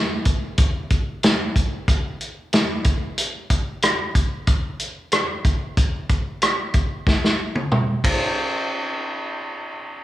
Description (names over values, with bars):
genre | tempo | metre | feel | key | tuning
rock | 93 BPM | 4/4 | straight | none | none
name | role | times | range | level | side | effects
vintage drum kit | drums | 0.3-8.2 s | hi-hat, kick drum, ride cymbal, rim click, snare drum, toms | -19 LUFS | equal | none
room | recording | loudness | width
light reverb | small room reverb | -19 LUFS | side -14 dB against mid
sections
0.0-8.4 A section; 8.4-10.0 B section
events
drum fill 7.1-8.4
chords
none